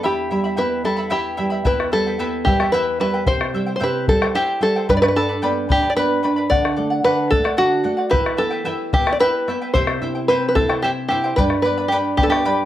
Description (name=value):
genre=andean folk, Andean ensemble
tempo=74 BPM (dotted quarters)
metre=6/8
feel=straight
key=E minor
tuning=A4 = 440 Hz
part: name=open-back banjo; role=melody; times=0.0-12.7 s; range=F#4 to D5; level=-19 LUFS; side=equal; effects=plate reverb
part: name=charango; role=accompaniment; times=0.0-12.7 s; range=E4 to B5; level=-24 LUFS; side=left 1 dB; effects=none
part: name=nylon-string guitar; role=accompaniment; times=0.0-12.7 s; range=E2 to E4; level=-24 LUFS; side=right 2 dB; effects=none
part: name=bombo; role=percussion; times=1.7-12.4 s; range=none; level=-21 LUFS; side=left 2 dB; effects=none
room=moderate studio ambience, RT60 0.5 s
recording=none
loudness=-16 LUFS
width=side -12 dB against mid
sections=0.0-1.6 A section; 1.6-12.7 A section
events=none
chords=0.0 Em; 3.3 C; 4.9 G; 6.5 D; 8.1 Em; 9.7 C; 11.4 G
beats=| 0.03 0.83 | 1.64 2.45 | 3.26 4.07 | 4.88 5.69 | 6.50 7.31 | 8.12 8.93 | 9.74 10.55 | 11.36 12.17